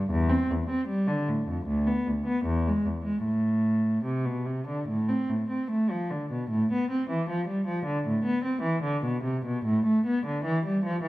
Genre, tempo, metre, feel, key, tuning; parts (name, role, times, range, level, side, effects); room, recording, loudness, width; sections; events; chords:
classical, baroque-style suite movement for unaccompanied cello; 75 BPM; 4/4; rubato; A4 = 438 Hz
dark cello; solo; 0.0-11.1 s; D2 to C4; -25 LUFS; equal
wet stone room reverb, RT60 1.2 s; heard from further back in the room; -25 LUFS; side -17 dB against mid
0.0-6.5 A section; 6.5-11.1 B section